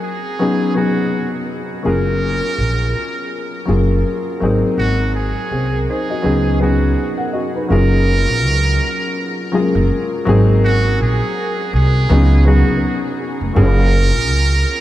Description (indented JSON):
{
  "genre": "lo-fi hip hop",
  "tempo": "82 BPM",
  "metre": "4/4",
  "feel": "swing 58% on 16ths",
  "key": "F# major",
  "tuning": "A4 = 439 Hz",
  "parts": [
    { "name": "trumpet with metal mute", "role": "melody", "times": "0.0-14.8 s", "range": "F#4 to A#4", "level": "-23 LUFS", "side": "right 3 dB", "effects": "ping-pong delay" },
    { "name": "warm upright piano", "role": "accompaniment", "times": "0.0-14.8 s", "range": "F#3 to F#5", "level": "-18 LUFS", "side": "left 2 dB", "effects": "cassette tape" },
    { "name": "upright bass", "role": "bass", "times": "1.9-14.6 s", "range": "E#1 to C#2", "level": "-15 LUFS", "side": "right 1 dB", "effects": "none" }
  ],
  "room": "moderate huge ambient reverb, RT60 8.1 s",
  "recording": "dreamy mix soaked in reverb",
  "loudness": "-14 LUFS",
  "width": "side -14 dB against mid",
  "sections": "0.0-7.7 A section; 7.7-14.8 B section",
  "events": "none",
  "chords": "0.4 C#9sus4; 1.8 F#maj9; 4.4 G#7; 6.2 C#9sus4; 7.7 F#maj9; 10.3 G#7; 12.1 C#9sus4; 13.6 F#maj9"
}